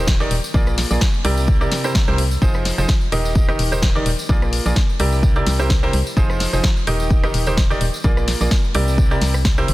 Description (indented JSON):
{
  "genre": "piano house",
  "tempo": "128 BPM",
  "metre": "4/4",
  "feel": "swing 55% on 16ths",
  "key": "unclear",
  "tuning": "A4 = 444 Hz",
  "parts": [
    { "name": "bright baby grand piano", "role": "riff", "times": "0.0-9.7 s", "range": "C3 to Eb5", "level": "-22 LUFS", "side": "right 1 dB", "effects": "sidechain pumping, dub echo" },
    { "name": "organ-like FM bass", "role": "bass", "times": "0.0-9.7 s", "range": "Eb1 to C2", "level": "-21 LUFS", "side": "equal", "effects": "sidechain pumping" },
    { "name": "electronic kick drum", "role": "drums", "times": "0.1-9.6 s", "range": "none", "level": "-17 LUFS", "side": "equal", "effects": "none" },
    { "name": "house drum kit", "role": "drums", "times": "0.1-9.7 s", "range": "hi-hat, rim click, snare drum", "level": "-24 LUFS", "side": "left 1 dB", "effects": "none" },
    { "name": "tambourine", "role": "percussion", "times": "0.1-9.7 s", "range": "none", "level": "-34 LUFS", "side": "left 1 dB", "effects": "none" }
  ],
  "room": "small room ambience",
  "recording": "dense, heavily limited modern master",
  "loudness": "-15 LUFS",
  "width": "side -18 dB against mid",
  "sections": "0.0-9.7 A section",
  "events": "none",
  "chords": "0.0 Ebmaj7; 0.5 Bb7; 1.2 C7; 2.4 Fm7; 3.4 Ebmaj7; 4.3 Bb7; 5.0 C7; 6.2 Fm7; 7.1 Ebmaj7; 8.0 Bb7; 8.7 C7"
}